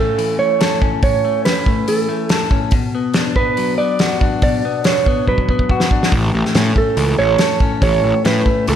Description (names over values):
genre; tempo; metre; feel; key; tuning
indie rock; 142 BPM; 4/4; straight; A major; A4 = 443 Hz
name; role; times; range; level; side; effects
mellow electric guitar; melody; 0.0-8.8 s; A4 to D5; -18 LUFS; right 5 dB; slapback echo
overdriven electric guitar; riff; 0.0-8.8 s; A2 to A4; -20 LUFS; left 5 dB; slapback echo
loose indie drum kit; drums; 0.2-8.8 s; hi-hat, kick drum, snare drum; -17 LUFS; equal; none
fuzz picked electric bass; bass; 6.1-8.8 s; A1 to A2; -18 LUFS; equal; overdrive
room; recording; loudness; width
moderate lush hall reverb, RT60 1.7 s, small room ambience; big arena sound; -13 LUFS; side -9 dB against mid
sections
0.0-8.8 A section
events
drum fill 5.3-6.1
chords
0.0 A; 2.7 Bm; 6.1 A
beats
0.18 0.61 | 1.03 1.46 1.88 2.31 | 2.73 3.15 3.58 4.00 | 4.42 4.85 5.27 5.70 | 6.12 6.55 6.97 7.39 | 7.82 8.24 8.67